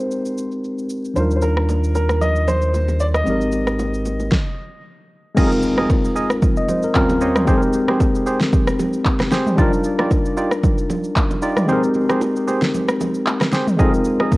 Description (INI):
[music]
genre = amapiano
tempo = 114 BPM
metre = 4/4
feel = swing 55% on 16ths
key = Eb major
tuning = A4 = 438 Hz
[part]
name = clear baby grand piano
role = melody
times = 0.0-4.8 s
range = Bb4 to Eb5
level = -24 LUFS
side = equal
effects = low-pass filter, cassette tape, tape echo
[part]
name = tine electric piano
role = accompaniment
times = 0.0-14.4 s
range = Eb2 to Eb5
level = -20 LUFS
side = left 1 dB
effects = medium stereo tremolo, low-pass filter, cassette tape
[part]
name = downlifter and impact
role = sound effects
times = 0.0-1.2, 5.5-7.5 s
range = none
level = -35 LUFS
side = equal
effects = none
[part]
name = deep house drum kit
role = drums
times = 0.1-14.4 s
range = crash cymbal, handclaps, kick drum, rim click, shaker, snare drum, toms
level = -19 LUFS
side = equal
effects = overdrive, cassette tape
[part]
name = sub bass with octave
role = bass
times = 1.2-4.3 s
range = Ab1 to Eb2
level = -20 LUFS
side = equal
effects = none
[part]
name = congas and bongos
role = percussion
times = 1.2-14.4 s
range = none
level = -28 LUFS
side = right 3 dB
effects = none
[part]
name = percussive organ stab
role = stabs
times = 5.4-14.3 s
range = Eb4 to Eb5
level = -24 LUFS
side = right 2 dB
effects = chorus, cassette tape, tape echo
[sound]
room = light reverb, digital ambience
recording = home recording on cassette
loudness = -16 LUFS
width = side -21 dB against mid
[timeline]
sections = 0.0-5.4 A section; 5.4-14.4 B section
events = stop 4.3-5.4; impact 5.4-7.5; kick muted 11.7-13.8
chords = 0.0 Abmaj7; 1.2 Ebmaj9; 3.3 Abmaj7; 5.4 Bb7sus4; 7.0 Eb13; 7.5 Abmaj7; 9.6 Ebmaj9; 11.7 Abmaj7; 13.8 Bb7sus4